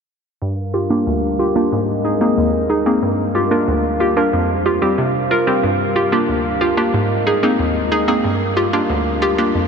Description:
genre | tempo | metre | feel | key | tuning
dancehall | 92 BPM | 4/4 | straight | G phrygian | A4 = 441 Hz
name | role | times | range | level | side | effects
hollow square pluck | accompaniment | 0.4-9.7 s | D2 to Bb4 | -16 LUFS | equal | chorus, low-pass filter
glass harmonica | sustained chords | 0.4-9.7 s | G3 to F5 | -21 LUFS | equal | low-pass filter
reverse cymbal | sound effects | 9.5-9.7 s | none | barely audible | none | none
room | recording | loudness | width
wet huge ambient reverb, RT60 8.5 s | dreamy mix soaked in reverb | -15 LUFS | side -6 dB against mid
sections
0.4-9.7 A section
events
filter sweep 0.4-9.7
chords
0.4 Gm7; 1.7 Abadd9; 3.0 Gm7; 4.3 Fsus2; 5.6 Gm7; 6.9 Abadd9; 8.2 Gm7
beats
| 0.42 1.07 1.72 2.38 | 3.03 3.68 4.33 4.98 | 5.64 6.29 6.94 7.59 | 8.24 8.90 9.55

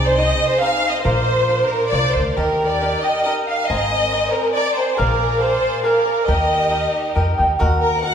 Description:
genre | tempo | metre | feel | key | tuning
mexican folk, mariachi | 138 BPM | 3/4 | rubato | Eb major | A4 = 438 Hz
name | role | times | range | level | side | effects
rich studio violin section | melody | 0.0-8.1 s | Bb4 to Gb5 | -18 LUFS | equal | none
cavaquinho | accompaniment | 0.0-8.1 s | Eb4 to Bb5 | -22 LUFS | left 1 dB | none
clear studio violin section | sustained chords | 0.0-7.6 s | Bb3 to D5 | -28 LUFS | equal | none
upright bass | bass | 0.0-8.1 s | Ab1 to F2 | -22 LUFS | equal | none
room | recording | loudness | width
wet recital hall reverb, RT60 1.6 s | recorded in a church or concert hall | -16 LUFS | side -8 dB against mid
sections
0.0-7.6 A section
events
none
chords
0.0 Ab/C; 1.0 Bbadd9; 2.4 Eb; 3.7 Abadd9; 5.0 Bb7; 6.3 Eb; 7.6 Ebm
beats
0.18 0.61 | 1.05 1.48 1.92 | 2.37 2.81 3.25 | 3.69 4.13 4.56 | 4.99 5.42 5.86 | 6.28 6.72 7.16 | 7.60 8.04

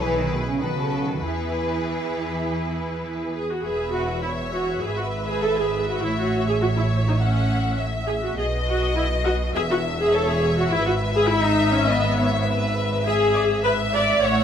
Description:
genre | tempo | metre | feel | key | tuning
quick classical-period movement for string orchestra | 102 BPM | 4/4 | straight | E major | A4 = 439 Hz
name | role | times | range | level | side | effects
rich symphonic violin section | melody | 0.0-14.4 s | B4 to E5 | -30 LUFS | left 4 dB | none
clear symphonic violin section | second line | 0.0-14.4 s | G#4 to F#5 | -30 LUFS | left 2 dB | none
clear symphonic viola section | accompaniment | 0.0-14.4 s | B3 to D5 | -24 LUFS | equal | none
rich symphonic cello section | bass | 0.0-14.4 s | E2 to E3 | -28 LUFS | right 2 dB | none
rich symphonic double bass section | bass | 0.0-14.4 s | E1 to E2 | -27 LUFS | right 1 dB | none
room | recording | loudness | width
moderate scoring stage reverb, RT60 1.9 s | close, detailed microphones | -20 LUFS | side -8 dB against mid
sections
0.0-3.6 A section; 3.6-14.4 B section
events
none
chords
0.0 E/B; 0.6 B7; 1.2 E; 4.8 E/G#; 6.0 A; 8.4 B; 9.6 E69; 10.7 E/G#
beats
0.02 0.61 | 1.22 1.82 2.44 3.05 | 3.65 4.24 4.84 5.43 | 6.02 6.61 7.21 7.79 | 8.38 8.97 9.55 10.13 | 10.71 11.30 11.88 12.46 | 13.05 13.64 14.22

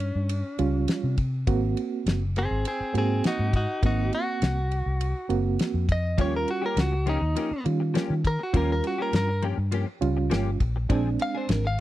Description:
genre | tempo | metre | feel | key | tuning
straight-eighth soul blues | 102 BPM | 4/4 | straight | Eb mixolydian | A4 = 442 Hz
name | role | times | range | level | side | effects
direct-recorded clean electric guitar | melody | 0.0-11.8 s | C4 to F5 | -29 LUFS | equal | none
vintage muted fingered electric bass | bass | 0.0-11.8 s | Gb1 to Eb3 | -26 LUFS | left 1 dB | none
damped 70s drum kit | drums | 0.0-11.6 s | kick drum, ride cymbal, snare drum | -26 LUFS | left 1 dB | none
reed electric piano | accompaniment | 0.6-11.6 s | G3 to Gb4 | -28 LUFS | right 6 dB | fast tremolo
direct-recorded clean electric guitar | stabs | 6.2-11.7 s | F3 to Ab4 | -32 LUFS | left 6 dB | ensemble chorus
room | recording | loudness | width
little or no reverb | dry, close 1970s-style studio recording | -23 LUFS | side -14 dB against mid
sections
0.0-11.8 A section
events
clean electric guitar solo 0.0-11.8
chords
0.0 Eb9 (rootless); 1.5 Ab9; 6.2 Eb9; 10.9 Bb9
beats
0.30 0.89 | 1.48 2.06 2.65 3.24 | 3.83 4.42 5.01 5.59 | 6.18 6.77 7.36 7.95 | 8.54 9.13 9.72 10.31 | 10.90 11.49

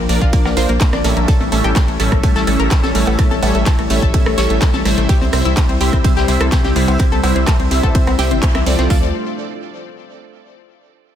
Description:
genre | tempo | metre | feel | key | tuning
progressive house | 126 BPM | 4/4 | straight | D minor | A4 = 440 Hz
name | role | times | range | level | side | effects
warm analog pad | sustained chords | 0.0-9.1 s | F3 to F5 | -23 LUFS | left 2 dB | chorus, sidechain pumping
analog pluck | arpeggios | 0.0-9.1 s | A3 to C#5 | -21 LUFS | left 1 dB | chorus, sidechain pumping, ping-pong delay
round analog bass | bass | 0.0-9.1 s | G1 to D2 | -18 LUFS | equal | sidechain pumping
supersaw stab | stabs | 0.1-9.1 s | A2 to E5 | -21 LUFS | right 2 dB | phaser, cassette tape, sidechain pumping, ping-pong delay
pop drum kit | drums | 0.1-8.9 s | handclaps, hi-hat, ride cymbal | -26 LUFS | right 1 dB | none
vintage brush drum kit | drums | 0.1-8.9 s | hi-hat, snare drum | -31 LUFS | equal | none
house drum kit | drums | 0.2-9.0 s | hi-hat, kick drum | -14 LUFS | equal | none
electronic rim click, cowbell and congas | percussion | 0.5-8.6 s | none | -25 LUFS | right 1 dB | sidechain pumping on perc, soft clipping on snare, sidechain pumping on snare
room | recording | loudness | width
light reverb | dense, heavily limited modern master | -12 LUFS | side -10 dB against mid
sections
0.0-8.9 A section; 8.9-10.8 B section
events
drop 0.0-8.9; band accent 8.4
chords
0.0 Bb; 1.3 A7; 5.1 C; 8.9 Dm7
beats
0.33 0.81 | 1.28 1.76 2.23 2.71 | 3.19 3.66 4.14 4.62 | 5.09 5.57 6.04 6.52 | 7.00 7.47 7.95 8.43 | 8.90

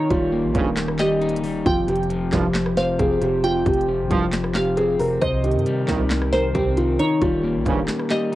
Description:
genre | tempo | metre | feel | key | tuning
hip hop, trap | 135 BPM | 4/4 | half-time | unclear | A4 = 440 Hz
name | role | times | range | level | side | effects
felt-muted upright piano | melody | 0.0-8.4 s | Eb4 to C5 | -22 LUFS | right 1 dB | cassette tape
glassy wavetable pluck | second line | 0.0-8.3 s | C5 to G5 | -28 LUFS | right 1 dB | chorus, analog delay
electric guitar at the edge of break-up | accompaniment | 0.0-8.4 s | F2 to Eb4 | -25 LUFS | left 3 dB | none
warbly tape-like pad | sustained chords | 0.0-8.4 s | C3 to C5 | -28 LUFS | right 1 dB | chorus, built-in reverb
warm 808-style bass | bass | 0.1-7.9 s | Eb1 to G2 | -28 LUFS | equal | none
trap drum kit | drums | 0.1-8.4 s | handclaps, hi-hat, kick drum, rim click, snare drum | -26 LUFS | equal | none
warm brass ensemble | stabs | 0.5-7.8 s | Bb1 to F3 | -25 LUFS | right 4 dB | none
room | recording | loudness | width
light reverb, digital ambience | home recording on cassette | -18 LUFS | side -15 dB against mid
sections
0.0-8.4 A section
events
kick muted 7.9-8.4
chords
0.0 Eb7; 1.7 Fsus2; 5.2 Cm7; 7.0 Eb7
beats
0.33 0.77 1.22 | 1.66 2.10 2.55 2.99 | 3.44 3.88 4.33 4.77 | 5.22 5.66 6.11 6.55 | 6.99 7.44 7.88 8.33

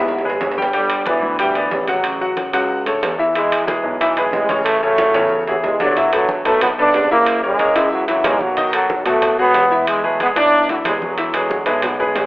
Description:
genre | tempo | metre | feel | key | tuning
latin, salsa | 184 BPM | 4/4 | straight | unclear | A4 = 441 Hz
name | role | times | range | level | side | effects
clear trombone section | melody | 0.0-12.0 s | B2 to D4 | -17 LUFS | equal | none
bright baby grand piano | accompaniment | 0.0-12.3 s | C#3 to G5 | -19 LUFS | left 1 dB | none
dark grand piano | bass | 0.0-12.3 s | F#1 to B2 | -26 LUFS | equal | none
congas | percussion | 0.1-12.3 s | none | -30 LUFS | equal | none
timbales | percussion | 0.1-12.3 s | none | -24 LUFS | right 2 dB | none
room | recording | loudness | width
moderate large studio reverb, RT60 0.9 s | telephone sound | -14 LUFS | side -19 dB against mid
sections
0.0-6.0 A section; 6.0-12.3 B section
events
drum fill 0.0-0.7, 5.0-6.0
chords
0.0 E; 0.7 Gmaj7; 2.0 A6; 3.4 E; 4.7 Amaj7; 6.0 E9sus4; 7.3 F#9; 8.6 B6; 9.9 E7; 11.2 E9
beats
0.08 0.41 | 0.74 1.06 1.39 1.72 | 2.04 2.37 2.70 3.03 | 3.35 3.68 4.01 4.33 | 4.66 4.99 5.31 5.64 | 5.96 6.29 6.62 6.94 | 7.27 7.59 7.92 8.25 | 8.57 8.90 9.22 9.55 | 9.88 10.20 10.53 10.85 | 11.18 11.50 11.83 12.15

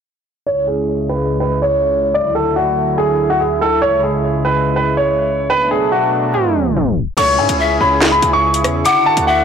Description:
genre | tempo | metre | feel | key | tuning
hip hop, drill | 143 BPM | 4/4 | half-time | C# phrygian | A4 = 444 Hz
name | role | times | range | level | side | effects
clear upright piano | melody | 0.5-9.4 s | F#4 to D6 | -15 LUFS | right 1 dB | low-pass filter, ping-pong delay
warm analog pad | sustained chords | 0.5-9.4 s | C#2 to G#4 | -18 LUFS | equal | chorus, low-pass filter
breathy bright large pan pipes | second line | 7.2-9.4 s | C#5 to F#5 | -18 LUFS | left 6 dB | ping-pong delay
distorted 808-style bass | bass | 7.2-9.4 s | C#2 to G#2 | -21 LUFS | equal | distortion
drill drum kit | drums | 7.2-9.3 s | crash cymbal, handclaps, hi-hat, rim click, snare drum | -19 LUFS | equal | none
room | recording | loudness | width
moderate lush hall reverb, RT60 1.8 s | blown-out, overdriven recording, overdrive, tape stop | -13 LUFS | side -7 dB against mid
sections
0.5-7.2 A section; 7.2-9.4 B section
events
filter sweep 0.5-7.2; tape stop 6.3-7.2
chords
0.5 C#m; 2.1 Dadd9; 3.8 C#m; 5.5 Bm7; 7.2 C#m; 8.9 Dadd9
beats
| 0.46 0.88 1.30 1.72 | 2.14 2.56 2.98 3.40 | 3.82 4.24 4.66 5.08 | 5.50 5.92 6.34 6.76 | 7.18 7.60 8.02 8.44 | 8.85 9.27

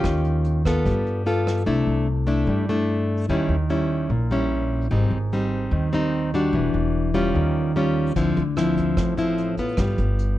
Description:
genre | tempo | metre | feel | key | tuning
bossa nova | 148 BPM | 4/4 | straight | unclear | A4 = 438 Hz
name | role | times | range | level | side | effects
nylon-string guitar | accompaniment | 0.0-10.4 s | Ab2 to A4 | -21 LUFS | left 1 dB | none
upright bass | bass | 0.0-10.4 s | E1 to G2 | -25 LUFS | equal | none
vintage brush drum kit | drums | 0.0-1.6, 8.2-10.3 s | hi-hat, kick drum, rim click | -29 LUFS | equal | none
room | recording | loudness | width
little or no reverb | dark, warm production | -20 LUFS | side -14 dB against mid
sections
0.0-1.7 A section; 1.7-10.4 B section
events
none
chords
0.0 Eb9; 0.8 G9; 1.7 C69; 3.3 Eb7b9; 4.9 Abmaj7; 6.5 Em9; 7.3 Eb9; 8.2 Dm9; 9.8 G7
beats
| 0.04 0.44 0.85 1.25 | 1.66 2.07 2.47 2.88 | 3.29 3.69 4.10 4.50 | 4.91 5.32 5.72 6.13 | 6.53 6.94 7.34 7.75 | 8.16 8.56 8.97 9.37 | 9.78 10.18

